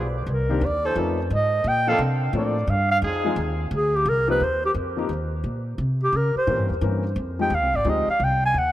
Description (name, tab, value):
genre	jazz, big band swing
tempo	174 BPM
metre	4/4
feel	swing 65% on 8ths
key	Bb major, Eb major from 4.4 s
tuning	A4 = 440 Hz
part	clear trombone section	sustained chords	0.0-3.6 s	D3 to A4	-30 LUFS	right 1 dB	none
part	upright bass	bass	0.0-8.7 s	Ab1 to Db3	-25 LUFS	equal	none
part	breathy clarinet	melody	0.3-8.7 s	G4 to Ab5	-23 LUFS	right 1 dB	analog delay
part	warm grand piano	accompaniment	0.5-8.1 s	Eb3 to Cb5	-29 LUFS	left 5 dB	none
room	moderate plate reverb, RT60 3.1 s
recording	dreamy mix soaked in reverb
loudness	-20 LUFS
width	side -14 dB against mid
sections	0.0-4.4 A section; 4.4-8.7 A section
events	clarinet solo 0.0-8.7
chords	0.3 Cm9; 1.0 F7alt; 1.6 Bbmaj9; 3.0 Fm7; 3.7 Bbadd9; 4.4 Ebsus2; 5.8 C7b9; 7.2 Fm9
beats	| 0.27 0.62 0.96 1.30 | 1.65 1.99 2.34 2.68 | 3.03 3.37 3.72 4.06 | 4.41 4.75 5.09 5.44 | 5.78 6.13 6.47 6.82 | 7.16 7.51 7.86 8.20 | 8.55